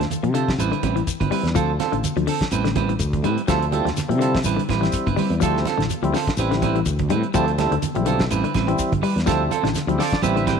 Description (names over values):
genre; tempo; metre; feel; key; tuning
afrobeat; 124 BPM; 4/4; swing 56% on 16ths; D dorian; A4 = 440 Hz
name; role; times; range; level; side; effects
semi-hollow electric guitar; arpeggios; 0.0-10.6 s; D3 to G3; -26 LUFS; left 13 dB; none
clean electric guitar; stabs; 0.0-10.6 s; G3 to B4; -24 LUFS; right 10 dB; none
fretless electric bass; bass; 0.0-10.6 s; G1 to C3; -23 LUFS; left 1 dB; none
damped 70s drum kit; drums; 0.0-10.6 s; hi-hat, kick drum, snare drum; -27 LUFS; equal; none
congas; percussion; 0.0-10.6 s; none; -29 LUFS; right 9 dB; none
shekere; percussion; 0.1-10.6 s; none; -32 LUFS; left 7 dB; none
tonewheel organ; accompaniment; 3.5-10.6 s; G3 to G5; -26 LUFS; equal; slow rotary speaker, overdrive
room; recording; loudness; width
light reverb; 1960s-style stereo with parts hard left and right; -18 LUFS; side -6 dB against mid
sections
0.0-10.6 A section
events
tonewheel organ fill 9.8-10.6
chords
0.0 Dm7; 0.6 Am9; 1.6 Dm7; 2.5 Am9; 3.5 Dm7; 4.5 Am9; 5.4 Dm7; 6.4 Am9; 7.3 Dm7; 8.3 Am9; 9.3 Dm7